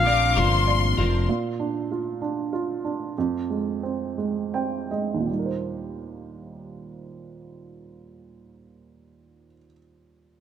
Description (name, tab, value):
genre	six-eight pop ballad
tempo	51-66 BPM (dotted quarters)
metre	6/8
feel	straight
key	Eb major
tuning	A4 = 442 Hz
part	bright reedy silver concert flute	melody	0.0-0.6 s	F5	-24 LUFS	left 2 dB	tape echo
part	dark upright piano	accompaniment	0.0-10.4 s	Eb2 to G5	-27 LUFS	right 5 dB	none
part	twelve-string electric guitar	arpeggios	0.0-1.3 s	Bb2 to Bb4	-29 LUFS	left 8 dB	analog chorus
part	mellow fretless electric bass	bass	0.0-1.3 s	F1 to Bb1	-22 LUFS	equal	lush chorus
part	rich studio violin section	second line	0.1-1.3 s	C6 to D6	-25 LUFS	left 5 dB	none
room	light reverb, small room ambience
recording	none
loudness	-23 LUFS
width	side -9 dB against mid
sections	0.0-1.3 A section; 1.3-5.3 B section; 5.3-10.0 C section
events	slowing down 1.3-5.3; upright piano fill 4.2-5.3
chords	0.0 Bbadd9; 1.3 Bb; 3.2 Fm; 5.3 Eb6